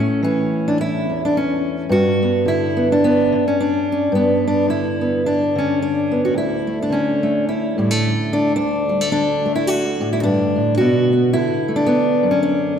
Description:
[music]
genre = folk, solo fingerstyle acoustic guitar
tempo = 108 BPM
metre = 4/4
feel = swing 58% on 8ths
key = D major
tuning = A4 = 439 Hz
[part]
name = fingerpicked steel-string acoustic guitar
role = solo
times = 0.0-12.8 s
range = D2 to F#4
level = -16 LUFS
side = equal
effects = none
[sound]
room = wet concert hall reverb, RT60 2.0 s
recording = recorded in a church or concert hall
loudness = -16 LUFS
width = side -8 dB against mid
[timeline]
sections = 0.0-12.8 A section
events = none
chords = 0.0 A; 1.9 Gmaj7; 6.3 Dsus2; 10.8 Bm7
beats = 0.23 0.79 1.34 | 1.90 2.46 3.01 3.57 | 4.12 4.68 5.24 5.79 | 6.35 6.90 7.46 8.01 | 8.57 9.12 9.68 10.23 | 10.79 11.35 11.90 12.46

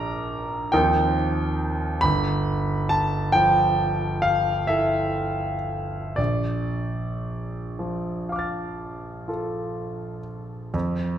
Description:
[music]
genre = classical, impressionist solo piano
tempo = 36-49 BPM (dotted quarters)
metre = 9/8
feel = rubato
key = unclear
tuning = A4 = 440 Hz
[part]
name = bright concert grand piano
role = solo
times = 0.0-11.2 s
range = G1 to A6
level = -22 LUFS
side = right 1 dB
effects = none
[sound]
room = wet recital hall reverb, RT60 1.7 s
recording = minimal, uncompressed stereo recording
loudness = -22 LUFS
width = side -10 dB against mid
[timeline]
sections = 0.0-10.7 A section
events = none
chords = 0.0 Bb; 0.7 Ebsus2; 2.0 G13; 6.2 Bbmaj7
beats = 0.71 | 2.02 3.33 4.69 | 6.18 7.78 9.29 | 10.74

